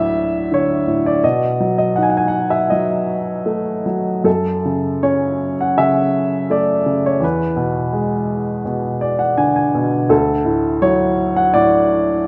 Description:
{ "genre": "classical, lyrical solo piano", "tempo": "82 BPM", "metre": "4/4", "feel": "rubato", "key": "F# minor", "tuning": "A4 = 440 Hz", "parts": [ { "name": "warm upright piano", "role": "solo", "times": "0.0-12.3 s", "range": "D2 to G#5", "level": "-17 LUFS", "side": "equal", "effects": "none" } ], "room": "moderate scoring stage reverb, RT60 1.9 s", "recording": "none", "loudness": "-17 LUFS", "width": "mono", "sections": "0.0-12.3 A section", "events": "upright piano fill 8.7-10.1", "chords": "0.0 Dmaj9; 1.2 B7; 4.3 F#m7; 7.2 E7; 10.1 D", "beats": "0.51 | 1.23 1.97 2.72 3.48 | 4.26 5.04 5.78 6.51 | 7.23 7.95 8.67 9.39 | 10.11 10.83 11.55" }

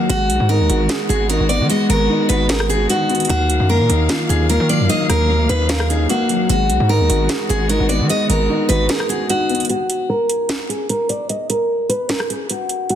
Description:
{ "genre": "hip hop, trap", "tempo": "150 BPM", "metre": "4/4", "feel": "half-time", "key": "unclear", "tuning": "A4 = 440 Hz", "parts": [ { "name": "picked steel-string acoustic guitar", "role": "melody", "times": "0.0-13.0 s", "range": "Gb4 to Eb5", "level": "-19 LUFS", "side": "equal", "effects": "low-pass filter, ping-pong delay" }, { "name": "dark concert grand piano", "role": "accompaniment", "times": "0.0-9.7 s", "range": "Eb3 to F5", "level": "-21 LUFS", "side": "left 1 dB", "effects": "low-pass filter" }, { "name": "dark symphonic string section", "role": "sustained chords", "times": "0.0-9.7 s", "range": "Eb3 to F5", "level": "-25 LUFS", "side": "left 1 dB", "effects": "none" }, { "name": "distorted 808-style bass", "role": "bass", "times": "0.1-8.9 s", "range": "Ab1 to Eb3", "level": "-18 LUFS", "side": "equal", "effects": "distortion" }, { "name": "trap drum kit", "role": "drums", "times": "0.1-13.0 s", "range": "hi-hat, rim click, snare drum", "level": "-23 LUFS", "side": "right 2 dB", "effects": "overdrive" } ], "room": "light reverb, small room ambience", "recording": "dense, heavily limited modern master", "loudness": "-15 LUFS", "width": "side -10 dB against mid", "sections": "0.0-9.7 A section; 9.7-13.0 B section", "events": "break 8.9-9.7, 9.7-13.0; filter sweep 9.7-13.0", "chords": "0.1 Abm7; 3.3 Ebmadd9; 6.5 Abm7; 9.7 N.C.", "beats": "| 0.10 0.50 0.90 1.30 | 1.70 2.10 2.50 2.90 | 3.30 3.70 4.10 4.50 | 4.90 5.30 5.70 6.10 | 6.50 6.90 7.30 7.70 | 8.10 8.50 8.90 9.30 | 9.70 10.10 10.50 10.90 | 11.30 11.70 12.10 12.50 | 12.90" }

